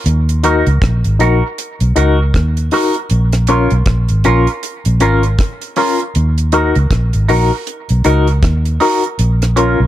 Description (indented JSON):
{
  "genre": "roots reggae",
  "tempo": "79 BPM",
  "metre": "4/4",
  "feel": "swing 60% on 16ths",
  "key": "Eb minor",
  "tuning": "A4 = 441 Hz",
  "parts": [
    { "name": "vintage muted fingered electric bass", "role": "bass", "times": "0.1-9.9 s", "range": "Ab1 to Eb2", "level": "-12 LUFS", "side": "equal", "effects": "none" },
    { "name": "deep reggae drum kit", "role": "drums", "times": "0.1-9.8 s", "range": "hi-hat, kick drum, rim click", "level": "-18 LUFS", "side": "right 1 dB", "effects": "none" },
    { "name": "clean electric guitar", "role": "accompaniment", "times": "0.4-9.8 s", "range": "Db4 to Bb4", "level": "-19 LUFS", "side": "right 5 dB", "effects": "phaser, tape echo" },
    { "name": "reed electric piano", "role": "stabs", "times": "0.4-9.8 s", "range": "Db4 to Bb4", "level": "-17 LUFS", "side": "left 5 dB", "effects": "overdrive, fast tremolo" }
  ],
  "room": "small room ambience",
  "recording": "none",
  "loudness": "-11 LUFS",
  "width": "side -13 dB against mid",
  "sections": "0.0-9.9 A section",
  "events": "none",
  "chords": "0.1 Ebm; 3.1 Bbm; 6.1 Ebm; 9.2 Bbm"
}